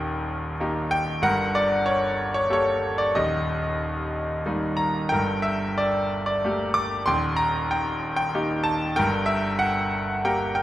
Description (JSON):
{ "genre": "classical, lyrical solo piano", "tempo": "94 BPM", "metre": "3/4", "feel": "rubato", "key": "unclear", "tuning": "A4 = 439 Hz", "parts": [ { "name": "bright concert grand piano", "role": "solo", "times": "0.0-10.6 s", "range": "D#1 to D6", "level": "-22 LUFS", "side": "equal", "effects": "none" } ], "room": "wet recital hall reverb, RT60 1.3 s", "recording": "recorded in a church or concert hall", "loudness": "-22 LUFS", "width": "side -14 dB against mid", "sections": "0.0-10.6 A section", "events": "none", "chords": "0.0 D#; 1.2 Gmadd9; 3.1 D#; 5.1 Gmadd9; 7.1 D#; 9.0 Gm", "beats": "0.59 | 1.22 1.86 2.50 | 3.14 3.79 4.45 | 5.12 5.78 6.44 | 7.08 7.71 8.34 | 8.97 9.61 10.25" }